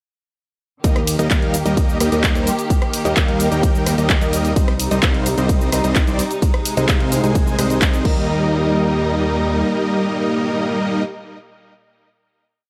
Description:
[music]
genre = EDM, festival progressive house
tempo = 129 BPM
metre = 4/4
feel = straight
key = Eb major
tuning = A4 = 440 Hz
[part]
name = rich studio string section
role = sustained chords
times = 0.8-11.0 s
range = Bb2 to G4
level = -27 LUFS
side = equal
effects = sidechain pumping
[part]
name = dense compressed supersaw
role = riff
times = 0.8-11.0 s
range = G3 to Ab5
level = -22 LUFS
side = equal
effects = sidechain pumping, delay
[part]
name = fat analog bass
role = bass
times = 0.8-9.6 s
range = C2 to Eb2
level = -24 LUFS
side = equal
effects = sidechain pumping
[part]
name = electronic kick drum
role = drums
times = 0.8-8.1 s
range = none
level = -20 LUFS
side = equal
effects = small room ambience
[part]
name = house drum kit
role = drums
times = 0.8-8.1 s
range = crash cymbal, handclaps, hi-hat, ride cymbal, rim click, shaker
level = -26 LUFS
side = equal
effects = small room ambience
[sound]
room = little or no reverb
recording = none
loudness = -18 LUFS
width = mono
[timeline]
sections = 0.8-8.3 drop; 8.3-12.0 final hit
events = drop 0.8-8.3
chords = 0.8 Eb; 4.6 Cm; 6.4 Ab/C; 8.1 Eb

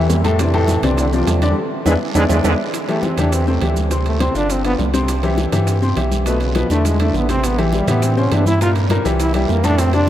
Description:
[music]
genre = latin, salsa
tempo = 204 BPM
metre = 4/4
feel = straight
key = A minor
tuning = A4 = 440 Hz
[part]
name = bright trombone section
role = melody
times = 0.0-2.5 s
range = A2 to G#3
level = -24 LUFS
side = right 1 dB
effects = none
[part]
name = bright upright piano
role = accompaniment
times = 0.0-10.1 s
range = A2 to D5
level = -19 LUFS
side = left 2 dB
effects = none
[part]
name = pure sine sub bass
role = bass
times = 0.0-10.1 s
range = G1 to A2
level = -18 LUFS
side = right 1 dB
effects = none
[part]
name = bongos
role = percussion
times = 0.1-10.1 s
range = none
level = -30 LUFS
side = left 3 dB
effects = none
[part]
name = congas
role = percussion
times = 0.1-10.1 s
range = none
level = -27 LUFS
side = equal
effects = none
[part]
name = guiro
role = percussion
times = 0.1-10.1 s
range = none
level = -36 LUFS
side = right 6 dB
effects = none
[part]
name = maracas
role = percussion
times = 0.1-10.1 s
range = none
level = -34 LUFS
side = right 7 dB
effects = none
[part]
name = timbales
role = percussion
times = 0.1-10.1 s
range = none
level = -29 LUFS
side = right 7 dB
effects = none
[part]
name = brilliant trombone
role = melody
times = 2.9-10.1 s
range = C#3 to F4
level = -21 LUFS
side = right 1 dB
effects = none
[sound]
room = wet huge ambient reverb, RT60 9.1 s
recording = in a vast, echoing space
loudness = -14 LUFS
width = side -12 dB against mid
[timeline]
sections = 0.0-2.7 A section; 2.7-10.1 B section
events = band accent 1.6-2.7; drum fill 2.0-2.7, 6.7-7.4; trombone solo 2.7-10.1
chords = 0.4 F6; 1.6 E7; 2.7 D9sus4; 3.9 G5; 5.1 Cmaj7; 6.3 Bm11; 6.8 Amadd11; 7.4 Am7; 8.6 Gm; 9.2 C

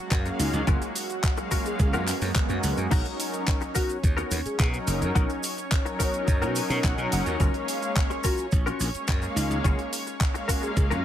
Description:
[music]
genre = nu-disco, nu disco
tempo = 107 BPM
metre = 4/4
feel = straight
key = F# major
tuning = A4 = 439 Hz
[part]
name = warm analog pad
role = accompaniment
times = 0.0-11.0 s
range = F#3 to E#5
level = -32 LUFS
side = left 1 dB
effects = chorus, sidechain pumping, digital delay
[part]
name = lush unison pad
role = sustained chords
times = 0.0-11.0 s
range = F#3 to C#5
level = -35 LUFS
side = right 1 dB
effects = chorus, sidechain pumping
[part]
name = direct-recorded clean electric guitar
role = riff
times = 0.1-11.0 s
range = B3 to F#5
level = -33 LUFS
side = left 4 dB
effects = ensemble chorus, digital delay
[part]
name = slap bass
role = bass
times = 0.1-11.0 s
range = F#1 to B2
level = -28 LUFS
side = equal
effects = none
[part]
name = electronic kick drum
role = drums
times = 0.1-10.9 s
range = none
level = -24 LUFS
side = equal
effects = none
[part]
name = pop drum kit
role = drums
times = 0.1-11.0 s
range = crash cymbal, handclaps, hi-hat, shaker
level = -32 LUFS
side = left 1 dB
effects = none
[part]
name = cabasa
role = percussion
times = 0.1-11.0 s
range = none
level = -40 LUFS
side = right 7 dB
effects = none
[part]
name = soft octave-layered synth lead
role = melody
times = 0.4-10.9 s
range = D#4 to C#5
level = -36 LUFS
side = left 2 dB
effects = chorus, tremolo, digital delay
[part]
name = swell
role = sound effects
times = 2.1-2.9 s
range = none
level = -36 LUFS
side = right 1 dB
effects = none
[sound]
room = little or no reverb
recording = none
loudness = -23 LUFS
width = side -11 dB against mid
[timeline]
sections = 0.0-11.0 A section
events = swell 2.1-2.9; clean electric guitar fill 6.3-7.4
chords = 0.0 F#maj7; 2.9 Bmaj7; 7.4 F#maj7

